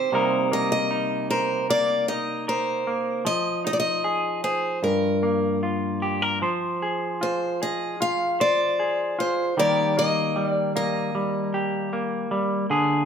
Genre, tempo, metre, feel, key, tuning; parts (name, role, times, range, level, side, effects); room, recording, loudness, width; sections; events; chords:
acoustic folk-pop ballad; 77 BPM; 4/4; straight; A4 = 440 Hz
picked steel-string acoustic guitar; melody; 0.0-11.9 s; Bb4 to F5; -24 LUFS; equal
clean electric guitar; accompaniment; 0.0-13.1 s; G2 to C5; -24 LUFS; equal
moderate large studio reverb, RT60 1.2 s; -22 LUFS; side -7 dB against mid
0.0-6.4 A section; 6.4-13.1 B section
0.1 Cm7; 3.2 Fm7; 4.8 Gm7; 6.4 Fm; 9.6 Eb